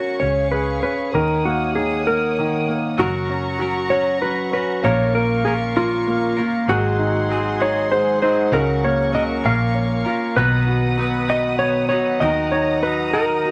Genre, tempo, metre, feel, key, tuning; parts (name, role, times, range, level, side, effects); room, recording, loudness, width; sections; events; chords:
six-eight pop ballad; 65 BPM (dotted quarters); 6/8; straight; F# major; A4 = 439 Hz
clean lap steel guitar; melody; 0.0-13.5 s; E#4 to E#5; -23 LUFS; equal
warm baby grand piano; accompaniment; 0.0-13.5 s; C#3 to C#5; -25 LUFS; equal
warm studio string section; sustained chords; 0.0-13.5 s; G#4 to D#6; -30 LUFS; equal
vintage muted fingered electric bass; bass; 0.0-13.5 s; F#1 to D#2; -27 LUFS; equal
direct-recorded clean electric guitar; arpeggios; 3.0-13.5 s; G#2 to B4; -29 LUFS; equal
wet small room ambience, RT60 0.5 s; vinyl crackle; -20 LUFS; mono
0.0-13.5 A section
0.2 C#; 1.1 D#m7; 3.0 F#; 4.8 A#m; 6.7 G#7; 8.5 F#/C#; 9.4 A#m; 10.4 B; 12.2 D#m